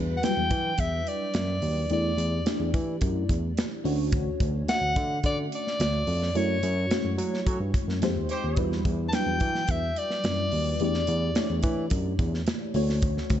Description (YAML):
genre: polished 1980s jazz-funk pop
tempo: 108 BPM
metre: 4/4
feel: straight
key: E dorian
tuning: A4 = 440 Hz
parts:
  - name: FM electric piano with soft pad layer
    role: accompaniment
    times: 0.0-13.4 s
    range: F#3 to E5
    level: -31 LUFS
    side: left 1 dB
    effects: tremolo, wide subtle chorus
  - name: barky tine electric piano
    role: bass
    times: 0.0-13.4 s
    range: D2 to F#3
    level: -28 LUFS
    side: equal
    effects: none
  - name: clear soprano saxophone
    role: melody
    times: 0.2-11.6 s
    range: C#5 to A5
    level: -29 LUFS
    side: left 1 dB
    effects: digital delay
  - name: modern studio drum kit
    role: drums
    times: 0.2-13.4 s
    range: hi-hat, kick drum, snare drum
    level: -29 LUFS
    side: right 1 dB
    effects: none
  - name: mellow horn section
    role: second line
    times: 7.5-8.7 s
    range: C4 to C#5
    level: -36 LUFS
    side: right 1 dB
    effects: none
room: light reverb, studio reverb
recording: dark, warm production, nothing above 8.0 kHz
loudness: -24 LUFS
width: side -11 dB against mid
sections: 0.0-13.4 A section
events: band accent 6.4-8.6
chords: 0.0 Em9; 1.9 A7sus4/E; 3.8 Dmaj7; 6.4 F#m7; 8.0 Fm9; 8.6 Em9; 10.8 A7sus4/E; 12.7 Dmaj7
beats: 0.23 0.79 1.34 | 1.90 2.46 3.01 3.57 | 4.13 4.68 5.24 5.79 | 6.35 6.91 7.46 8.02 | 8.58 9.13 9.69 10.24 | 10.80 11.36 11.91 12.47 | 13.02